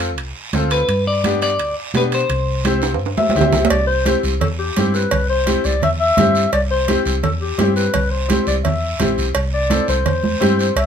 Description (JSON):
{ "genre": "latin, cumbia", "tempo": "170 BPM", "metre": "4/4", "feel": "straight", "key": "C major", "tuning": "A4 = 441 Hz", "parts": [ { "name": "bright upright piano", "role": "accompaniment", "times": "0.0-10.7 s", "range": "B3 to A4", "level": "-21 LUFS", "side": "left 3 dB", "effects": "none" }, { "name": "hollow-body short-scale fingered electric bass", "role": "bass", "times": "0.0-10.9 s", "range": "A1 to B2", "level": "-20 LUFS", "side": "equal", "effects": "none" }, { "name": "guiro", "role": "percussion", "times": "0.0-10.9 s", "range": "none", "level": "-29 LUFS", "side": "right 5 dB", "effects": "none" }, { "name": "timbales and cowbell", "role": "percussion", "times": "0.0-10.9 s", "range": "none", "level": "-23 LUFS", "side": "right 6 dB", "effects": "none" }, { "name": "congas", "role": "percussion", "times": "0.5-10.6 s", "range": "none", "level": "-23 LUFS", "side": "right 5 dB", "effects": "none" }, { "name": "clean electric guitar", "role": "melody", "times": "0.7-3.3 s", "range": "B4 to D5", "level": "-20 LUFS", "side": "left 2 dB", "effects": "spring reverb" }, { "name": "dark clarinet", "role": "second line", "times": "3.2-10.9 s", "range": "G4 to E5", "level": "-20 LUFS", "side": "left 3 dB", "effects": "none" } ], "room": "light reverb", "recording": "minimal, uncompressed stereo recording", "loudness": "-15 LUFS", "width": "side -8 dB against mid", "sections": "0.0-3.7 A section; 3.7-10.9 B section", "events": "drum fill 2.8-3.7; clarinet solo 3.7-10.9", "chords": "0.0 F; 0.9 G; 2.3 C", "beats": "0.18 0.53 | 0.88 1.24 1.59 1.94 | 2.29 2.65 3.00 3.35 | 3.71 4.06 4.41 4.76 | 5.12 5.47 5.82 6.18 | 6.53 6.88 7.23 7.59 | 7.94 8.29 8.65 9.00 | 9.35 9.71 10.06 10.41 | 10.77" }